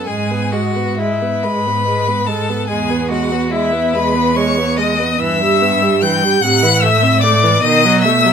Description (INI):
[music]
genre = classical, slow romantic movement for string quartet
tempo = 42-50 BPM (dotted quarters)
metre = 6/8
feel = rubato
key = E major, E minor from 5.2 s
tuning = A4 = 440 Hz
[part]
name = clear violin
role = melody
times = 0.0-8.3 s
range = E5 to G6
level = -17 LUFS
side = left 7 dB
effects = none
[part]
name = rich violin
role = second line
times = 0.0-8.3 s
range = E4 to G5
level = -19 LUFS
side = left 3 dB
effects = none
[part]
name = warm viola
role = accompaniment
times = 0.0-8.3 s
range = C3 to C4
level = -19 LUFS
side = right 3 dB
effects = none
[part]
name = clear cello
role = bass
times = 0.1-8.3 s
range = E2 to B2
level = -18 LUFS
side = right 4 dB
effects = none
[sound]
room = moderate studio reverb, RT60 0.7 s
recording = minimal, uncompressed stereo recording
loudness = -12 LUFS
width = side -7 dB against mid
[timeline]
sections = 0.0-8.3 A section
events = none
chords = 0.1 F#m11/G#; 2.7 E; 5.2 Em/G; 6.4 Am; 7.6 B7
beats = | 0.07 1.44 | 2.69 3.94 | 5.20 6.42 | 7.62